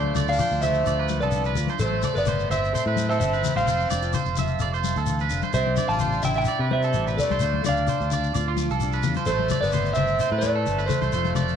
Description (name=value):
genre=highlife guitar band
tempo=129 BPM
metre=4/4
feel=straight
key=unclear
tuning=A4 = 435 Hz
part: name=clean electric guitar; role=melody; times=0.0-11.6 s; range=A4 to A5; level=-25 LUFS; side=right 1 dB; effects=none
part: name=brilliant trumpet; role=second line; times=0.0-11.6 s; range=A3 to F4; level=-36 LUFS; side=left 10 dB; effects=tape echo
part: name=nylon-string guitar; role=accompaniment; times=0.0-11.6 s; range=A2 to A4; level=-35 LUFS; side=left 9 dB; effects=none
part: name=accordion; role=sustained chords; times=0.0-11.6 s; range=F4 to D6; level=-38 LUFS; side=right 2 dB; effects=light tremolo tuning
part: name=electric guitar at the edge of break-up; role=arpeggios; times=0.0-11.6 s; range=F4 to E5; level=-29 LUFS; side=right 11 dB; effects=lush chorus, tape echo
part: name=fingered electric bass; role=bass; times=0.0-11.6 s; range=F1 to C3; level=-27 LUFS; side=equal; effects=none
part: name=congas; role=percussion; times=0.0-11.5 s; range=none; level=-30 LUFS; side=left 8 dB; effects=none
part: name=shekere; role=percussion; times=0.2-11.5 s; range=none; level=-33 LUFS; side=left 6 dB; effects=none
room=light reverb, small room reverb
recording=1960s-style stereo with parts hard left and right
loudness=-21 LUFS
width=side -8 dB against mid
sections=0.0-11.6 A section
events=none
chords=0.0 Dm; 1.8 Am; 3.7 F; 5.5 Cadd9; 7.4 Dm; 9.3 Am